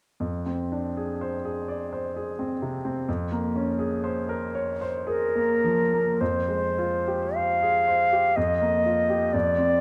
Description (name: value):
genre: classical, impressionist duo for flute and grand piano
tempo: 50-66 BPM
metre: 3/4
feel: rubato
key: F minor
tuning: A4 = 440 Hz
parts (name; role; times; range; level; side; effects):
- bright grand piano; accompaniment; 0.2-9.8 s; F2 to D5; -30 LUFS; equal; none
- concert flute; melody; 5.1-9.8 s; Bb4 to F5; -24 LUFS; equal; none
room: moderate recital hall reverb, RT60 1.6 s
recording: close, detailed microphones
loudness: -26 LUFS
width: mono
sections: 0.2-6.2 A section; 6.2-9.8 B section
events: none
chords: 0.2 Fm6; 3.1 Bbm9/F; 6.2 Fmadd9; 8.4 Ebadd9/F